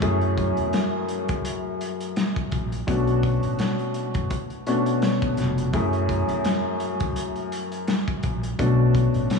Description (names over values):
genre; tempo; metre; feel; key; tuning
hip hop, boom-bap hip-hop; 84 BPM; 4/4; swing 56% on 16ths; F# minor; A4 = 440 Hz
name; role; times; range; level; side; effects
dark upright piano; accompaniment; 0.0-9.4 s; F#2 to G#4; -24 LUFS; left 2 dB; cassette tape, high-pass filter, low-pass filter
upright bass; bass; 0.0-9.3 s; E#1 to F#2; -25 LUFS; equal; none
crunchy breakbeat drum kit; drums; 0.0-9.4 s; hi-hat, kick drum, snare drum; -28 LUFS; left 1 dB; none
room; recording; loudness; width
moderate cathedral reverb, RT60 4.5 s; dreamy mix soaked in reverb, small room ambience; -22 LUFS; side -5 dB against mid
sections
0.0-9.4 A section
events
none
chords
0.0 F#m7; 2.9 Bm7; 5.7 F#m7; 8.6 Bm7